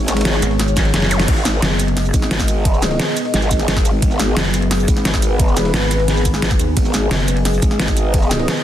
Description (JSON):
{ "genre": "dark technical drum and bass", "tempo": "175 BPM", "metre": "4/4", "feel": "straight", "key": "G# minor", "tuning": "A4 = 440 Hz", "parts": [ { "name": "dark analog pad", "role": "sustained chords", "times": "0.0-8.6 s", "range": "B3 to D#5", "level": "-22 LUFS", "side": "left 1 dB", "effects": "chorus, sidechain pumping" }, { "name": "growl bass", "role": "bass", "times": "0.0-8.5 s", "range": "G#1", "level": "-19 LUFS", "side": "equal", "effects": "chorus, overdrive, sidechain pumping" }, { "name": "dubstep drum kit", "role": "drums", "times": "0.0-8.6 s", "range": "crash cymbal, hi-hat, shaker, snare drum", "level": "-20 LUFS", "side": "equal", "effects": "none" }, { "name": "breakbeat sampler-style drum kit", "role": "drums", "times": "0.1-8.6 s", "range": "hi-hat, ride cymbal, snare drum", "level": "-31 LUFS", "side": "right 1 dB", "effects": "none" }, { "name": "pulsing pluck wobble bass", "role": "bass", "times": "0.4-2.1, 4.4-7.6 s", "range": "F#1 to D#2", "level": "-18 LUFS", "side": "equal", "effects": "chorus, tube saturation" }, { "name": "electronic kick drum", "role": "drums", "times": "0.8-8.2 s", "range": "none", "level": "-17 LUFS", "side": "equal", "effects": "overdrive" }, { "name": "zap", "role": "sound effects", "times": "1.1-1.2 s", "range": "none", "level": "-26 LUFS", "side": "equal", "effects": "none" } ], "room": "light reverb", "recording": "dense, heavily limited modern master", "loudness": "-14 LUFS", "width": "side -11 dB against mid", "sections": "0.0-1.3 A section; 1.3-8.6 A section", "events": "drop 0.0-1.3, 1.3-8.6; drum fill 0.8-1.3; kick drops out 0.9-1.3", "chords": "0.0 G#m" }